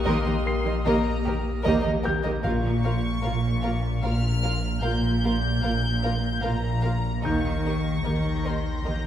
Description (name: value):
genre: cinematic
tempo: 75 BPM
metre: 3/4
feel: straight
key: Bb dorian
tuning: A4 = 440 Hz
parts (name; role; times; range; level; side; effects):
- rich studio violin section; melody; 0.0-9.1 s; Bb5 to G6; -34 LUFS; left 3 dB; none
- dark chamber violin section; second line; 0.0-8.9 s; G4 to F5; -32 LUFS; equal; none
- warm French horn section; sustained chords; 0.0-7.5 s; Bb3 to G4; -32 LUFS; left 4 dB; none
- punchy sub bass; drone; 0.0-9.1 s; Bb1; -30 LUFS; equal; none
- rich studio violin section; texture; 0.0-2.0, 7.3-9.1 s; Eb6 to Bb6; -40 LUFS; right 1 dB; none
- warm concert grand piano; texture; 0.0-9.1 s; Bb4 to C7; -35 LUFS; left 2 dB; none
- dark studio viola section; accompaniment; 0.1-8.9 s; Bb3 to G4; -31 LUFS; right 2 dB; none
- dark studio double bass section; bass; 0.1-9.1 s; Bb1 to Eb2; -29 LUFS; equal; none
- warm studio cello section; bass; 0.1-9.1 s; Bb2 to Eb3; -30 LUFS; right 2 dB; none
- timpani; percussion; 2.4-3.6 s; Bb2; -32 LUFS; left 2 dB; none
room: wet scoring stage reverb, RT60 1.6 s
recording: heard from further back in the room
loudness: -22 LUFS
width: side -10 dB against mid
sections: 0.0-9.1 A section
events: none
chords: 0.0 Eb/Bb; 2.4 Bbm; 7.2 Eb/Bb